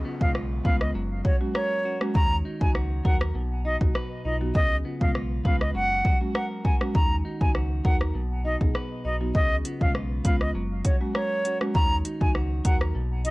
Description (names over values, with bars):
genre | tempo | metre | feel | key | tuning
dancehall | 100 BPM | 4/4 | straight | F# major | A4 = 441 Hz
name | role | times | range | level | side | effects
buzzing marimba with medium mallets | accompaniment | 0.0-13.3 s | F#3 to G#4 | -33 LUFS | right 1 dB | none
clean electric guitar | arpeggios | 0.0-13.3 s | B2 to B4 | -36 LUFS | left 1 dB | none
sub bass with octave | bass | 0.0-13.3 s | F#1 to D#2 | -29 LUFS | equal | none
downlifter | sound effects | 0.0-2.1 s | none | -50 LUFS | equal | none
bright reedy concert flute | melody | 0.2-13.3 s | C#5 to A#5 | -28 LUFS | equal | tape echo
deep house drum kit | drums | 0.2-13.3 s | hi-hat, kick drum, rim click | -24 LUFS | equal | none
room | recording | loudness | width
little or no reverb | dry, gritty hardware recording, cassette tape | -22 LUFS | side -21 dB against mid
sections
0.0-13.3 A section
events
none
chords
0.0 C#7; 0.9 F#add9; 2.1 D#m; 3.4 B; 4.5 C#7; 5.8 F#add9; 7.0 D#m; 8.2 B; 9.3 C#7; 10.6 F#add9; 11.8 D#m